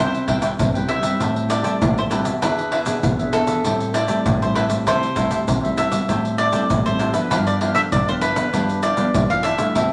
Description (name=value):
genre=samba and choro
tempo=98 BPM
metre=4/4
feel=straight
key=C major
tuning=A4 = 440 Hz
part: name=mandolin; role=melody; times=0.0-9.9 s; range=A4 to F5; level=-26 LUFS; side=equal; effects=none
part: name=cavaquinho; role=accompaniment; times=0.0-9.9 s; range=D4 to A5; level=-29 LUFS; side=equal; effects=none
part: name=nylon-string guitar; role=accompaniment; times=0.0-9.9 s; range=G2 to G#4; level=-28 LUFS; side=equal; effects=none
part: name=nylon-string guitar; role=bass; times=0.0-9.9 s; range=E2 to A3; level=-28 LUFS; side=equal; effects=none
part: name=egg shaker, pandeiro and surdo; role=percussion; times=0.1-9.9 s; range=none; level=-24 LUFS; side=equal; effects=none
room=wet studio reverb, RT60 0.8 s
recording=none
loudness=-20 LUFS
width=mono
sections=0.0-9.9 A section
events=none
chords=0.0 Cmaj7; 1.2 Am7; 2.4 E7; 3.6 Am7; 4.9 C6; 6.1 Am7; 7.3 G7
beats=0.59 1.20 1.81 | 2.43 3.04 3.65 4.26 | 4.87 5.48 6.09 6.70 | 7.31 7.92 8.53 9.14 | 9.75